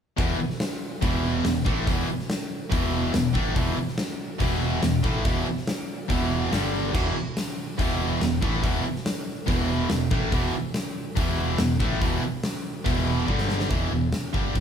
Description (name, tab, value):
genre	hard rock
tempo	142 BPM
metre	4/4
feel	straight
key	E minor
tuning	A4 = 440 Hz
part	distorted electric guitar	riff	0.2-13.7 s	E2 to A3	-31 LUFS	equal	distortion
part	high-gain distorted guitar	riff	0.2-14.6 s	E2 to A3	-30 LUFS	left 6 dB	distortion
part	tight distorted guitar	riff	0.2-14.6 s	E2 to A3	-29 LUFS	right 5 dB	distortion
part	hollow-body short-scale fingered electric bass	bass	0.2-14.6 s	E1 to A1	-30 LUFS	equal	none
part	huge arena drum kit	drums	0.2-14.6 s	crash cymbal, hi-hat, kick drum, snare drum	-27 LUFS	equal	none
room	moderate large studio reverb, RT60 1.2 s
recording	band playing live in one room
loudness	-23 LUFS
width	side -8 dB against mid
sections	0.2-13.7 A section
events	drum fill 13.3-13.7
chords	0.2 E5; 6.5 G5; 6.9 E5; 13.3 G5; 13.7 Em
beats	| 0.18 0.60 1.02 1.45 | 1.87 2.29 2.71 3.14 | 3.56 3.98 4.41 4.83 | 5.25 5.67 6.10 6.52 | 6.94 7.36 7.79 8.21 | 8.63 9.05 9.48 9.90 | 10.32 10.74 11.17 11.59 | 12.01 12.44 12.86 13.28 | 13.71 14.13 14.55